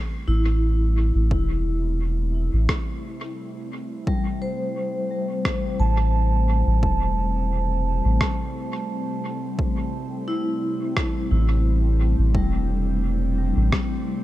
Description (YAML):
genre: ambient dub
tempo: 87 BPM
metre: 4/4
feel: swing 54% on 16ths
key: A minor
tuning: A4 = 436 Hz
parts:
  - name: airy breathy pad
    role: sustained chords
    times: 0.0-14.2 s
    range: C3 to E4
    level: -31 LUFS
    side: right 1 dB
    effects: chorus
  - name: vibraphone with medium mallets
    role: arpeggios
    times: 0.3-14.2 s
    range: G3 to A5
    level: -28 LUFS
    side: left 1 dB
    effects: tape echo
  - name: soft dub sub bass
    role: bass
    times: 0.3-13.7 s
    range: E1 to A1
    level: -20 LUFS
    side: equal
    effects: none
  - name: electronic kick drum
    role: drums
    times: 1.3-13.9 s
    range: none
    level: -26 LUFS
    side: equal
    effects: overdrive
  - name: electronic rim click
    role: drums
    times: 2.7-13.9 s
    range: none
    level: -31 LUFS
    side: equal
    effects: dub echo
room: little or no reverb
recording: echo-heavy mix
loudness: -20 LUFS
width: side -15 dB against mid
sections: 0.0-14.2 A section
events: fade-in on analog synth pad 0.0-14.2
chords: 0.0 Am7